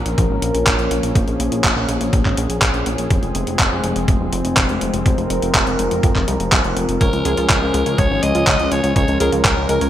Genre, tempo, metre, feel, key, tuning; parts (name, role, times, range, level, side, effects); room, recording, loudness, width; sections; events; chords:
italo disco; 123 BPM; 4/4; straight; Bb minor; A4 = 440 Hz
warm analog pad; sustained chords; 0.0-9.9 s; F3 to Bb4; -21 LUFS; left 1 dB; wide subtle chorus
chorused synth bass; bass; 0.0-9.9 s; Eb1 to F2; -22 LUFS; equal; digital delay
dusty soul sampler-style drum kit; drums; 0.1-9.9 s; handclaps, hi-hat; -20 LUFS; equal; gated reverb
electronic kick drum; drums; 0.2-9.5 s; -18 LUFS; equal
raspy alto saxophone; melody; 7.0-9.9 s; Bb4 to Eb5; -20 LUFS; equal; digital delay
analog pluck; arpeggios; 7.0-9.9 s; Ab3 to Db5; -26 LUFS; right 3 dB; chorus, cassette tape, digital delay
moderate plate reverb, RT60 2.4 s; bright 1980s-style digital production; -15 LUFS; side -11 dB against mid
0.0-9.9 A section
0.0 Bbm; 3.1 Fm; 7.0 Db